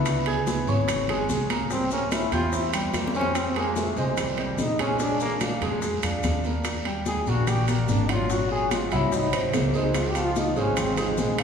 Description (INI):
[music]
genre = Afro-Cuban jazz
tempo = 146 BPM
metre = 4/4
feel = straight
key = F minor from 3.4 s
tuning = A4 = 440 Hz
[part]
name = bright trombone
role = melody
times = 0.0-11.4 s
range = Eb3 to Ab4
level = -28 LUFS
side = left 1 dB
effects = none
[part]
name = warm concert grand piano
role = accompaniment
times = 0.0-11.4 s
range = F3 to G#6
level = -28 LUFS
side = right 2 dB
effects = none
[part]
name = upright bass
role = bass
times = 0.0-11.4 s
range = G#1 to E#2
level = -28 LUFS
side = left 1 dB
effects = none
[part]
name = bongos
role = percussion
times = 0.1-11.4 s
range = none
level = -34 LUFS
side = left 3 dB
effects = none
[part]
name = congas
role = percussion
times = 0.1-11.4 s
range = none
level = -34 LUFS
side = left 2 dB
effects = none
[part]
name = guiro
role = percussion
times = 0.1-11.4 s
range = none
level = -40 LUFS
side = right 4 dB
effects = none
[part]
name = maracas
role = percussion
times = 0.1-11.4 s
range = none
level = -40 LUFS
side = left 5 dB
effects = none
[part]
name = timbales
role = percussion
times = 0.1-11.4 s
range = none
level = -33 LUFS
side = right 4 dB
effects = none
[sound]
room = wet church reverb, RT60 3.1 s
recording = recorded in a church or concert hall, studio reverb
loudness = -22 LUFS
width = side -7 dB against mid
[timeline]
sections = 0.0-3.4 A section; 3.4-11.4 A section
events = trombone solo 0.0-11.4; drum fill 2.9-3.4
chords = 0.1 C#5; 1.7 C7; 3.4 Fm7; 5.0 Bb7; 6.7 Ebmaj7; 8.3 Ab7; 9.9 Dbmaj7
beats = | 0.06 0.47 0.88 1.29 | 1.70 2.12 2.53 2.94 | 3.35 3.76 4.17 4.59 | 5.00 5.41 5.83 6.24 | 6.65 7.06 7.47 7.89 | 8.30 8.71 9.12 9.54 | 9.95 10.36 10.77 11.18